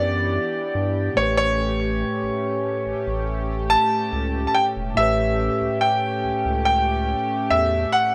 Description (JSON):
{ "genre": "contemporary R&B", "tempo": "71 BPM", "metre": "4/4", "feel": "straight", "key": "unclear", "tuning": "A4 = 440 Hz", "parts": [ { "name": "bright concert grand piano", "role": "melody", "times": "0.0-8.1 s", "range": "C#5 to A5", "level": "-24 LUFS", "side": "equal", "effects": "tape echo" }, { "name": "mellow tine electric piano", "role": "accompaniment", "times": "0.0-8.1 s", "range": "A2 to D5", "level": "-31 LUFS", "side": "equal", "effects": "none" }, { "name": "chorused pulse-width pad", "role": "sustained chords", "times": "0.0-8.1 s", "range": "E3 to G4", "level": "-31 LUFS", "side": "equal", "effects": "none" }, { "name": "round analog bass", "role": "bass", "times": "0.0-7.9 s", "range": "E1 to G2", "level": "-29 LUFS", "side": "equal", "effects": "none" } ], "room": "little or no reverb", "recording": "dry, gritty hardware recording", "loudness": "-22 LUFS", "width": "mono", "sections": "0.0-8.1 A section", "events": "none", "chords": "0.0 Em7; 1.2 A9" }